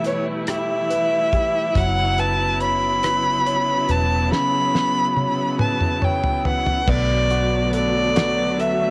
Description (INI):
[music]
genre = six-eight pop ballad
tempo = 47 BPM (dotted quarters)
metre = 6/8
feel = straight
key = B minor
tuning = A4 = 441 Hz
[part]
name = warm violin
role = melody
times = 0.0-8.9 s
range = C#5 to B5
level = -23 LUFS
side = equal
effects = cassette tape
[part]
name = clear concert grand piano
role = accompaniment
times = 0.0-8.9 s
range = B2 to C#5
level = -30 LUFS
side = equal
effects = cassette tape
[part]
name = clear studio string section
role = sustained chords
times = 0.0-8.9 s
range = C#3 to E4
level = -28 LUFS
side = equal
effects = cassette tape
[part]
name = damped 70s drum kit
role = drums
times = 0.0-8.8 s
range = crash cymbal, hi-hat, kick drum, rim click, snare drum, toms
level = -26 LUFS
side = equal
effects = cassette tape
[part]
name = vintage muted fingered electric bass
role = bass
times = 1.8-8.9 s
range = E1 to B1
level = -26 LUFS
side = equal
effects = none
[sound]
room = light reverb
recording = home recording on cassette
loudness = -20 LUFS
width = mono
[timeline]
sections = 0.0-6.9 A section; 6.9-8.9 B section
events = drum fill 4.3-6.9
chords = 0.0 Em; 1.8 F#sus4; 6.9 Bm7